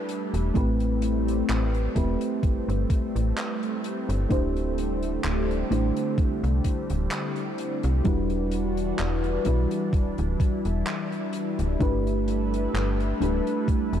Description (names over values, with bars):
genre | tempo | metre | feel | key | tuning
vaporwave | 64 BPM | 4/4 | swing 54% on 16ths | G major | A4 = 436 Hz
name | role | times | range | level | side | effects
mellow FM electric piano | accompaniment | 0.0-14.0 s | G3 to C5 | -28 LUFS | equal | phaser, lush chorus, analog delay
lush unison pad | sustained chords | 0.0-14.0 s | D3 to B4 | -33 LUFS | right 1 dB | chorus, phaser
damped 70s drum kit | drums | 0.1-14.0 s | handclaps, hi-hat | -36 LUFS | equal | studio reverb
slap-like FM bass | bass | 0.3-14.0 s | D1 to C2 | -26 LUFS | equal | none
electronic kick drum | drums | 0.6-13.9 s | none | -25 LUFS | equal | studio reverb
room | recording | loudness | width
light reverb, small room ambience | dark, warm production | -23 LUFS | side -10 dB against mid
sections
0.0-14.0 A section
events
none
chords
0.0 G69; 0.6 Am7; 4.3 D7sus4; 8.1 Em9; 11.8 G69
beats
| 0.56 1.49 2.43 3.37 | 4.31 5.24 6.18 7.12 | 8.06 8.99 9.93 10.87 | 11.81 12.74 13.68